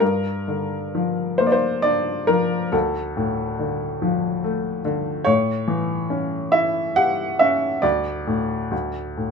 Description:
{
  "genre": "classical, lyrical solo piano",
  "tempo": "64-73 BPM",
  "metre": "3/4",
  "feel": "rubato",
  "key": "G minor",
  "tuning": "A4 = 444 Hz",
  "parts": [
    { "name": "clear upright piano", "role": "solo", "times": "0.0-9.3 s", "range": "D2 to F#5", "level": "-20 LUFS", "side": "left 1 dB", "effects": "none" }
  ],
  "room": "little or no reverb",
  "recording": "close, detailed microphones",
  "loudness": "-20 LUFS",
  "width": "side -5 dB against mid",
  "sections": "0.0-9.3 A section",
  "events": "none",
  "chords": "0.0 Gm7; 2.7 Dm; 5.3 A7; 7.8 D5",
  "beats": "| 0.02 0.95 1.86 | 2.74 3.60 4.44 | 5.27 6.11 6.97 | 7.84 8.72"
}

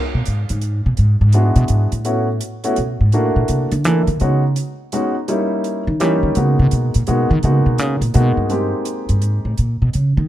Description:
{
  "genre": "jazz, small-group swing and bop",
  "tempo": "167 BPM",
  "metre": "3/4",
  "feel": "swing 65% on 8ths",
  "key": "G# minor",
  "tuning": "A4 = 440 Hz",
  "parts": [
    { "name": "upright bass", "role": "bass", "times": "0.1-10.3 s", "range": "G2 to E3", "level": "-15 LUFS", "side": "equal", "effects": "none" },
    { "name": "hi-hat", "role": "drums", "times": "0.3-10.0 s", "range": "none", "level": "-30 LUFS", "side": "right 3 dB", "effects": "none" },
    { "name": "warm baby grand piano", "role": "accompaniment", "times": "1.3-9.5 s", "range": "G3 to A4", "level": "-20 LUFS", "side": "equal", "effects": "none" }
  ],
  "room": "light reverb",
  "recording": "none",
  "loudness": "-15 LUFS",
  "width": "side -13 dB against mid",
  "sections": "0.0-8.5 A section; 8.5-10.3 A section",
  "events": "upright bass solo 0.0-10.3",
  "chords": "0.0 G#m; 1.0 E7; 2.1 A69; 3.1 F#7alt; 4.2 B69; 5.3 D#7b9; 6.4 G#m7; 8.5 G#maj9; 9.6 F# (rootless)",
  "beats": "0.26 0.62 | 0.98 1.33 1.69 | 2.05 2.41 2.77 | 3.13 3.49 3.85 | 4.20 4.56 4.92 | 5.28 5.64 6.00 | 6.36 6.71 7.07 | 7.43 7.79 8.15 | 8.51 8.87 9.23 | 9.59 9.94"
}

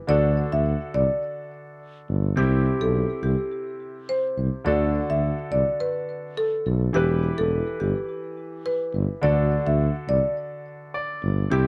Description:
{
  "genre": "dancehall",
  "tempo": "105 BPM",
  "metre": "4/4",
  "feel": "straight",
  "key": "unclear",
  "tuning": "A4 = 440 Hz",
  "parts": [
    { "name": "clear concert grand piano", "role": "accompaniment", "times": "0.0-11.7 s", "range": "C3 to D5", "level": "-33 LUFS", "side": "equal", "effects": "none" },
    { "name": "marimba with medium mallets", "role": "melody", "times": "0.1-11.7 s", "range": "G4 to E5", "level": "-28 LUFS", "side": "equal", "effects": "tape echo" },
    { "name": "mellow tuba", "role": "bass", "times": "0.1-11.7 s", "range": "E1 to D2", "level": "-25 LUFS", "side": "equal", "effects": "none" }
  ],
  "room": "light reverb",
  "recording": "dark, warm production",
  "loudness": "-24 LUFS",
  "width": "mono",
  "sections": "0.0-11.7 A section",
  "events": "grand piano fill 10.7-11.5",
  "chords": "0.1 D; 2.4 C; 4.7 D; 6.9 Em; 9.2 D",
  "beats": "| 0.09 0.66 1.23 1.80 | 2.37 2.94 3.52 4.09 | 4.66 5.23 5.80 6.37 | 6.94 7.51 8.09 8.66 | 9.23 9.80 10.37 10.94 | 11.52"
}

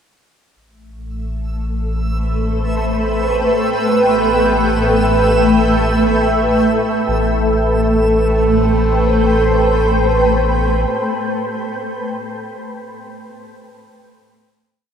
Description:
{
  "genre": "ambient",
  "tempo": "free time",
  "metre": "none",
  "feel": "none",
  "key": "A minor",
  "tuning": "A4 = 440 Hz",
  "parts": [
    { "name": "granular cloud pad", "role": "sustained chords", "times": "1.7-11.1 s", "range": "A3 to G5", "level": "-16 LUFS", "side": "equal", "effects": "built-in reverb, ensemble chorus" },
    { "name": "round analog bass", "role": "bass", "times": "0.6-10.9 s", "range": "A1", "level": "-20 LUFS", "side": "equal", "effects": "none" },
    { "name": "backwards swelling texture", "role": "texture", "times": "1.9-7.1 s", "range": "E5 to E6", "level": "-28 LUFS", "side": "right 1 dB", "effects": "built-in reverb" },
    { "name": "breathy flute-like synth lead", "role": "melody", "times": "3.8-10.9 s", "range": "A4 to B4", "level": "-20 LUFS", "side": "right 1 dB", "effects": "chorus, ping-pong delay" }
  ],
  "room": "wet cathedral reverb, RT60 5.1 s",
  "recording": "dreamy mix soaked in reverb",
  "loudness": "-13 LUFS",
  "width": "side -8 dB against mid",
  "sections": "0.6-7.1 A section; 7.1-10.3 final chord",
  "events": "fade-in on synth texture 0.6-7.1",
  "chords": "0.6 Am7; 3.8 Em/A; 7.1 Am7",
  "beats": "free time"
}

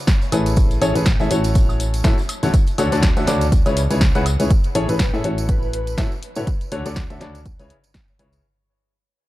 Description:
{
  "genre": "piano house",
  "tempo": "122 BPM",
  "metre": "4/4",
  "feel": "swing 56% on 16ths",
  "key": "unclear",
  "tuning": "A4 = 440 Hz",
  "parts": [
    { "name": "electronic kick drum", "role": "drums", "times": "0.1-8.1 s", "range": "none", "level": "-17 LUFS", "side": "equal", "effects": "none" },
    { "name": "punchy analog drum machine", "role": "drums", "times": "0.1-8.4 s", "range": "hi-hat, snare drum, tambourine, woodblock", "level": "-26 LUFS", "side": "equal", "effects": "none" },
    { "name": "tambourine", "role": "percussion", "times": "0.1-8.4 s", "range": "none", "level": "-38 LUFS", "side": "right 6 dB", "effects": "none" },
    { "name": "bright upright piano", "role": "riff", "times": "0.3-8.4 s", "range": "A2 to F#5", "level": "-23 LUFS", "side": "left 2 dB", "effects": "sidechain pumping, low-pass filter, dub echo" },
    { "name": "solid FM bass", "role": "bass", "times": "0.3-8.4 s", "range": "A1 to A2", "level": "-21 LUFS", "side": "equal", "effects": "sidechain pumping" },
    { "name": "breathy flute-like synth lead", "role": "melody", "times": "4.9-6.5 s", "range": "B4", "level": "-32 LUFS", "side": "left 1 dB", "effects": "tremolo, ensemble chorus" }
  ],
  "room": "little or no reverb",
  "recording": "dark, warm production",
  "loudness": "-16 LUFS",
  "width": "side -16 dB against mid",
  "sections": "0.0-4.5 A section; 4.5-8.4 B section",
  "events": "fade-out 4.5-8.4; filter sweep on FM bass 4.5-8.4",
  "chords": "0.0 C#m7; 0.6 Amaj7; 1.6 F#m7/A; 2.5 Dmaj7; 3.5 C#m7; 4.5 Amaj7; 5.5 F#m7/A; 6.5 Dmaj7; 7.5 C#m7",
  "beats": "0.08 | 0.57 1.06 1.55 2.05 | 2.54 3.03 3.52 4.01 | 4.50 5.00 5.49 5.98 | 6.47 6.96 7.46 7.95"
}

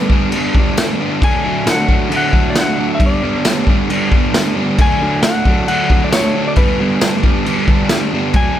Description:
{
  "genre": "garage rock duo or trio",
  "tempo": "135 BPM",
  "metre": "4/4",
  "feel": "straight",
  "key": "unclear",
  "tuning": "A4 = 440 Hz",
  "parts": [
    { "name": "clean lap steel guitar", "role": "melody", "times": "0.0-8.6 s", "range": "B4 to G#5", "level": "-20 LUFS", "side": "left 2 dB", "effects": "none" },
    { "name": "crunchy overdriven guitar", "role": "riff", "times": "0.0-8.6 s", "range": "G2 to D4", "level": "-16 LUFS", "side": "right 1 dB", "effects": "none" },
    { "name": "raw garage drum kit", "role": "drums", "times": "0.1-8.4 s", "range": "crash cymbal, kick drum, snare drum", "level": "-15 LUFS", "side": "equal", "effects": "none" },
    { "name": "tambourine", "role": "percussion", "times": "0.8-8.0 s", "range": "none", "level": "-28 LUFS", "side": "left 6 dB", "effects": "none" }
  ],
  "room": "light reverb",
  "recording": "none",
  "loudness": "-12 LUFS",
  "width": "side -11 dB against mid",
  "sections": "0.0-8.6 A section",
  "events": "none",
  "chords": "0.0 G; 1.2 D; 3.0 G; 4.8 D; 6.6 G",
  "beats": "0.33 0.78 | 1.22 1.67 2.12 2.56 | 3.01 3.45 3.90 4.35 | 4.79 5.24 5.68 6.13 | 6.57 7.02 7.46 7.91 | 8.35"
}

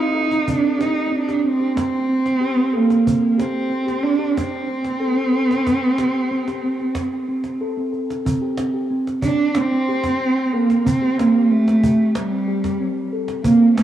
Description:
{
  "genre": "world meditative, meditative tuned percussion",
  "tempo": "92 BPM",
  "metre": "4/4",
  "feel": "straight",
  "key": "C dorian",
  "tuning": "A4 = 440 Hz",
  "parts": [
    { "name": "dark cello", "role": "melody", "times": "0.0-13.8 s", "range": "G3 to Eb4", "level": "-18 LUFS", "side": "right 2 dB", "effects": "tape echo" },
    { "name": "steel tongue drum", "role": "arpeggios", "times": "0.0-13.8 s", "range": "Bb3 to A4", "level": "-23 LUFS", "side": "left 2 dB", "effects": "cassette tape" },
    { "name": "cajon", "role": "percussion", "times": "0.3-13.8 s", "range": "none", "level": "-28 LUFS", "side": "right 2 dB", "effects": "none" }
  ],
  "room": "wet spring reverb, RT60 2.4 s",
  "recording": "home recording on cassette",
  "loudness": "-17 LUFS",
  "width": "side -11 dB against mid",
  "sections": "0.0-8.3 A section; 8.3-13.8 B section",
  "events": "none",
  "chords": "0.0 C5",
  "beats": "| 0.48 1.13 1.77 2.42 | 3.07 3.72 4.37 5.02 | 5.67 6.32 6.97 7.62 | 8.27 8.91 9.56 10.21 | 10.86 11.51 12.16 12.81 | 13.46"
}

